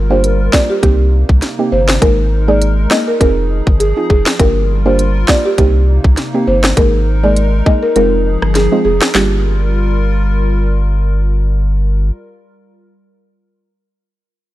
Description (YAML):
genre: dancehall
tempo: 101 BPM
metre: 4/4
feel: swing 56% on 16ths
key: G phrygian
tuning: A4 = 441 Hz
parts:
  - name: hollow soft pad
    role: sustained chords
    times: 0.0-12.1 s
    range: C3 to Bb4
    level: -22 LUFS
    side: left 2 dB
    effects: chorus, sidechain pumping
  - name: warm sub bass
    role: bass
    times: 0.0-12.1 s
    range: F1 to C2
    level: -14 LUFS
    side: equal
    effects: none
  - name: buzzing marimba with soft mallets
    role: melody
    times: 0.1-10.9 s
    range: G4 to Eb5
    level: -16 LUFS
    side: equal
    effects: digital delay
  - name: soft round pluck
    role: accompaniment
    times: 0.1-12.1 s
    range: G3 to Ab4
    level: -18 LUFS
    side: right 3 dB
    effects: chorus, sidechain pumping
  - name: island pop drum kit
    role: drums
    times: 0.2-9.3 s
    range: handclaps, hi-hat, kick drum, rim click, snare drum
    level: -13 LUFS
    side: equal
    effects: none
room: little or no reverb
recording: none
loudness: -10 LUFS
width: side -15 dB against mid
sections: 0.0-9.1 A section; 9.1-11.5 B section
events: kick muted 8.0-9.1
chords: 0.0 Gm7; 0.8 Cm7; 2.0 Absus2; 3.2 Fm7; 4.4 Gm7; 5.6 Cm7; 6.8 Absus2; 8.0 Fm7; 9.1 Gm7